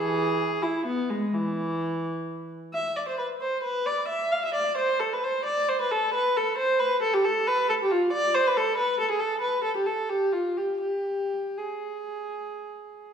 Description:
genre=classical, baroque-style suite movement for unaccompanied viola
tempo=89 BPM (dotted quarters)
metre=12/8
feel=uneven beats, rubato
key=A minor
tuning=A4 = 440 Hz
part: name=warm viola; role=solo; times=0.0-13.1 s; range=E3 to F5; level=-24 LUFS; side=equal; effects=none
room=wet recital hall reverb, RT60 1.4 s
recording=heard from further back in the room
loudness=-24 LUFS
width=side -7 dB against mid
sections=0.0-13.1 A section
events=none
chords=none

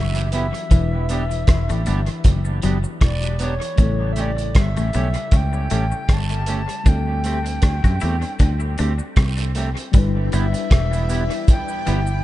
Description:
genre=lovers rock reggae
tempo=78 BPM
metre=4/4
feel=swing 55% on 16ths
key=unclear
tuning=A4 = 441 Hz
part: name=reedy FM lead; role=melody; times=0.0-12.2 s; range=C#5 to A5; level=-29 LUFS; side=equal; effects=chorus, dub echo
part: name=tine electric piano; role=accompaniment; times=0.0-12.2 s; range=C#3 to B4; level=-31 LUFS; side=left 4 dB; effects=overdrive, fast stereo tremolo, dub echo
part: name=twangy electric guitar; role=riff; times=0.0-12.1 s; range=E3 to F#4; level=-30 LUFS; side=left 6 dB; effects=spring reverb, dub echo
part: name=fingered electric bass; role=bass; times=0.0-12.2 s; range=E1 to F#2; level=-21 LUFS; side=equal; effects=none
part: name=cloth-damped thuddy drum kit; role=drums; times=0.1-12.1 s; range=hi-hat, kick drum, rim click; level=-18 LUFS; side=equal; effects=none
part: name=cabasa and guiro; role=percussion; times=0.1-12.2 s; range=none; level=-38 LUFS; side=right 7 dB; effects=none
part: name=clean electric guitar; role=stabs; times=0.2-12.0 s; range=A3 to G4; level=-30 LUFS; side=right 3 dB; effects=lush chorus, dub echo
part: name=string machine, full ensemble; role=second line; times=9.9-12.2 s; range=E4 to G5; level=-32 LUFS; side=left 1 dB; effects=ensemble chorus
room=small room ambience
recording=nothing above 10.6 kHz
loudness=-17 LUFS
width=side -15 dB against mid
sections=0.0-9.9 A section; 9.9-12.2 B section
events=none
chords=0.0 G6; 0.7 Em7; 3.8 A7; 6.9 D7sus4; 9.9 Em7

